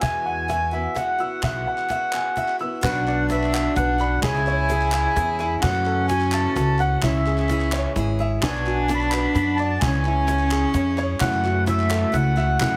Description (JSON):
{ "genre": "indie folk with a building arrangement", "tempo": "129 BPM", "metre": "3/4", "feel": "straight", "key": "F# minor", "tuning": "A4 = 439 Hz", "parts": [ { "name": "mellow accordion", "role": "melody", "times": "0.0-12.8 s", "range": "E5 to B5", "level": "-27 LUFS", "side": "equal", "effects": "none" }, { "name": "picked acoustic archtop guitar", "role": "accompaniment", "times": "0.0-12.8 s", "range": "F#2 to A4", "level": "-35 LUFS", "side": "equal", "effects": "none" }, { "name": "dark upright piano", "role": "arpeggios", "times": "0.0-12.8 s", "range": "C#4 to E6", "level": "-31 LUFS", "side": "equal", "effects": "none" }, { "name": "upright bass", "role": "bass", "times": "0.0-12.8 s", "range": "G#1 to F#2", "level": "-26 LUFS", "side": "equal", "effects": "none" }, { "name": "cajon", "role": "drums", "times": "0.0-12.7 s", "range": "none", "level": "-31 LUFS", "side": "equal", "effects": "none" }, { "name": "group handclap", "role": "percussion", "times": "0.0-12.7 s", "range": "none", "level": "-35 LUFS", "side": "equal", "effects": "none" }, { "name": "warm cello", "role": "second line", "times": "2.8-12.8 s", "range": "A3 to E4", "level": "-29 LUFS", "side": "equal", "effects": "none" }, { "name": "dark upright piano", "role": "accompaniment", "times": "2.8-12.8 s", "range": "F#1 to E5", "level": "-37 LUFS", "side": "equal", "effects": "none" } ], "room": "light reverb, small room ambience", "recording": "heavily compressed radio sound, multiband compression", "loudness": "-22 LUFS", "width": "mono", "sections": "0.0-2.8 A section; 2.8-12.8 B section", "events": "break 2.6", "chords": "0.0 Eadd9; 2.8 Bm; 4.2 C#m; 5.6 F#m7; 7.0 C#m; 8.4 Bm; 9.8 C#m; 11.2 F#m7", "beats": "| 0.02 0.49 0.96 | 1.43 1.90 2.37 | 2.83 3.30 3.77 | 4.24 4.70 5.17 | 5.63 6.10 6.56 | 7.03 7.49 7.96 | 8.42 8.89 9.35 | 9.82 10.28 10.75 | 11.21 11.68 12.14 | 12.61" }